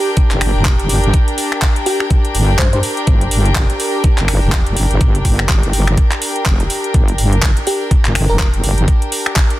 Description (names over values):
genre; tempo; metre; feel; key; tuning
bass house; 124 BPM; 4/4; swing 59% on 16ths; G minor; A4 = 440 Hz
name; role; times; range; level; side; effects
bell-like FM electric piano; melody; 0.0-2.8, 7.7-8.5 s; G4 to C5; -23 LUFS; equal; chorus, phaser, tape echo
warm chamber string section; texture; 0.0-9.6 s; D4 to G5; -21 LUFS; left 1 dB; sidechain pumping
electronic kick drum; drums; 0.2-9.5 s; none; -13 LUFS; equal; none
garage drum kit; drums; 0.2-9.6 s; finger snaps, handclaps, hi-hat; -20 LUFS; equal; none
wobble bass; bass; 0.3-8.9 s; F1 to G2; -15 LUFS; equal; chorus, tube saturation, sidechain pumping
room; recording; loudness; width
digital ambience; dense, heavily limited modern master; -12 LUFS; side -16 dB against mid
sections
0.0-9.6 A section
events
filter sweep on wobble bass 0.0-9.6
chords
0.0 Gm